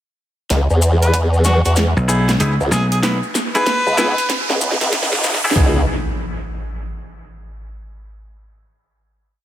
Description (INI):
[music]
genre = glitch hop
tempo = 95 BPM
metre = 4/4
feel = swing 64% on 16ths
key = C# minor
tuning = A4 = 443 Hz
[part]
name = formant-sweep wobble bass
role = bass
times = 0.5-5.9 s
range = C#2 to E2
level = -15 LUFS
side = equal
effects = chorus, overdrive
[part]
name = dubstep drum kit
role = drums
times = 0.5-5.7 s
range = kick drum, snare drum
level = -20 LUFS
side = equal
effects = high-pass filter on kick, studio reverb, high-pass filter on snare
[part]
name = dubstep drum kit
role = drums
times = 0.5-5.6 s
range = hi-hat, snare drum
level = -22 LUFS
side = equal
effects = studio reverb, dub echo
[part]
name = maracas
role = percussion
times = 0.5-5.5 s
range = none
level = -27 LUFS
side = left 5 dB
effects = none
[part]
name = riser and impact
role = sound effects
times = 1.9-8.1 s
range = none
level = -26 LUFS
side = right 1 dB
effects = none
[part]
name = warm harmonica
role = melody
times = 1.0-4.4 s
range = F#4 to B4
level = -22 LUFS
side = equal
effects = low-pass filter, dub echo
[part]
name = dry thumbed slap bass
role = bass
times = 2.0-3.2 s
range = B1 to C#2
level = -16 LUFS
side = equal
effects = tube saturation
[part]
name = semi-hollow electric guitar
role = stabs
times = 2.1-5.8 s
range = B3 to B4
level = -23 LUFS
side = equal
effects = vintage 12-bit sampler grit, sidechain pumping, dub echo
[sound]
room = light reverb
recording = echo-heavy mix, high-pass filter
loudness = -14 LUFS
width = side -12 dB against mid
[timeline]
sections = 0.5-5.6 build; 5.6-8.1 final chord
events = build-up 0.5-5.6; drum fill 0.5-5.6; filter sweep 0.5-5.6; riser 1.9-5.6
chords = 0.5 C#m7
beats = | 0.51 1.14 1.77 2.40 | 3.03 3.66 4.29 4.93 | 5.56 6.19 6.82 7.45